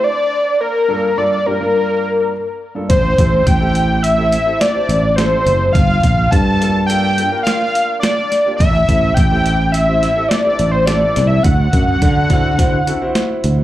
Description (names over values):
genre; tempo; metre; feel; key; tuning
progressive instrumental, band music in an uneven meter; 105 BPM; 5/4; straight; G dorian; A4 = 438 Hz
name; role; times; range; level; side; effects
fat analog lead; melody; 0.0-13.6 s; Bb4 to A5; -16 LUFS; left 1 dB; slapback echo, digital delay
warm concert grand piano; accompaniment; 0.0-13.6 s; G2 to C5; -23 LUFS; equal; slapback echo
sustaining fretless electric bass; bass; 2.9-13.6 s; F#1 to D3; -15 LUFS; equal; none
boom bap sampler-style drum kit; drums; 2.9-13.6 s; hi-hat, kick drum, snare drum; -17 LUFS; equal; none
room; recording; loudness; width
light reverb; live gig heard through the venue's PA, club reverb; -12 LUFS; side -14 dB against mid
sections
0.0-13.6 A section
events
none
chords
0.1 Gm7; 2.9 Am7; 5.7 Gm7; 8.6 Am7; 11.4 D7